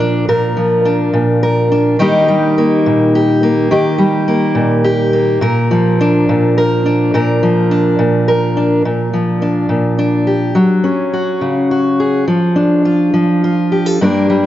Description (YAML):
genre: folk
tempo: 70 BPM (dotted quarters)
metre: 6/8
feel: straight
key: Bb major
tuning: A4 = 440 Hz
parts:
  - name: fingerpicked steel-string acoustic guitar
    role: solo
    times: 0.0-14.5 s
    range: G2 to Bb4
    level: -11 LUFS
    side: equal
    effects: tape echo
room: light reverb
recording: nothing above 7.8 kHz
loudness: -11 LUFS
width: side -13 dB against mid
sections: 0.0-8.8 A section; 8.8-14.5 B section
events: none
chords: 0.0 Bb; 2.0 Eb; 5.4 Bb; 10.6 Gbsus2; 12.3 Dm/F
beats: | 0.27 1.13 | 1.99 2.85 | 3.70 4.56 | 5.42 6.27 | 7.13 7.99 | 8.84 9.70 | 10.56 11.42 | 12.28 13.14 | 14.01